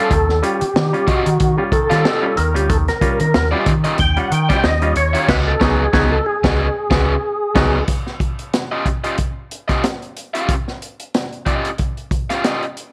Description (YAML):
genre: funk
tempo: 92 BPM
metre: 4/4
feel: swing 56% on 16ths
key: Eb mixolydian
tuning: A4 = 440 Hz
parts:
  - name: percussive tonewheel organ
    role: melody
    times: 0.0-7.8 s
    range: Gb4 to G5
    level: -22 LUFS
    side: equal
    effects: overdrive, chorus vibrato, slow rotary speaker
  - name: crunchy overdriven guitar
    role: accompaniment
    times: 0.0-12.6 s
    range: Db4 to F5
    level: -24 LUFS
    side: equal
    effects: none
  - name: mellow clav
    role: stabs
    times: 0.0-7.8 s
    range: Eb3 to F4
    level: -25 LUFS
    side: equal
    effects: none
  - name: overdriven fingered electric bass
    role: bass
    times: 0.1-7.8 s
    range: Db2 to Eb3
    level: -21 LUFS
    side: equal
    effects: none
  - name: crunchy breakbeat drum kit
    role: drums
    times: 0.1-12.9 s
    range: crash cymbal, hi-hat, kick drum, snare drum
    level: -22 LUFS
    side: equal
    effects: none
room: light reverb, studio reverb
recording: none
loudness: -18 LUFS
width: mono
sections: 0.0-7.9 A section; 7.9-12.9 B section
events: tonewheel organ solo 0.0-7.9; band accent 5.3-7.9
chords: 0.0 Eb9; 5.3 Db9sus4; 7.9 Eb9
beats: | 0.11 0.75 1.40 2.05 | 2.70 3.34 3.99 4.64 | 5.29 5.93 6.58 7.23 | 7.88 8.53 9.18 9.84 | 10.49 11.14 11.79 12.44